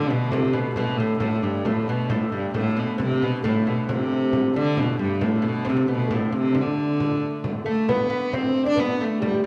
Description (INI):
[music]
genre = medieval dance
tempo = 135 BPM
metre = 3/4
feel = straight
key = unclear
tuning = A4 = 441 Hz
[part]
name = clear viola da gamba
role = melody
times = 0.0-9.4 s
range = G2 to D4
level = -25 LUFS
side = equal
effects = none
[part]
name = lute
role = second line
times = 0.0-9.5 s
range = G2 to D4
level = -32 LUFS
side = equal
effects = none
[part]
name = dark hurdy-gurdy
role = drone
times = 0.0-9.5 s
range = D3 to A3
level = -34 LUFS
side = equal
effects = none
[part]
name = frame drum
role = percussion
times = 0.3-9.4 s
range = none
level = -34 LUFS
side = equal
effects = none
[part]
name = felt-muted upright piano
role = second line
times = 2.6-9.5 s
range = G3 to D5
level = -31 LUFS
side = equal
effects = none
[sound]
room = wet recital hall reverb, RT60 1.6 s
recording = dark, warm production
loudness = -23 LUFS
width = mono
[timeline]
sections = 0.0-7.9 A section; 7.9-9.5 B section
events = none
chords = none